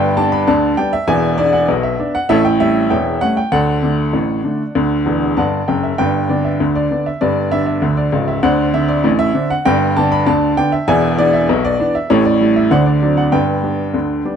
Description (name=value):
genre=ragtime piano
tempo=98 BPM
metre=2/4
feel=straight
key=G major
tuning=A4 = 440 Hz
part: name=clear upright piano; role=solo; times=0.0-14.4 s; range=C#1 to B5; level=-13 LUFS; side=equal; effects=none
room=moderate echo chamber reverb, RT60 2.1 s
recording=close, detailed microphones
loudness=-13 LUFS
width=side -7 dB against mid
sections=0.0-14.4 A section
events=upright piano fill 5.1-6.0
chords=0.0 G; 1.1 E5; 2.3 A7; 3.5 D; 6.0 G; 8.4 D5; 9.7 G; 10.9 E5; 12.1 A5; 12.7 D7; 13.3 G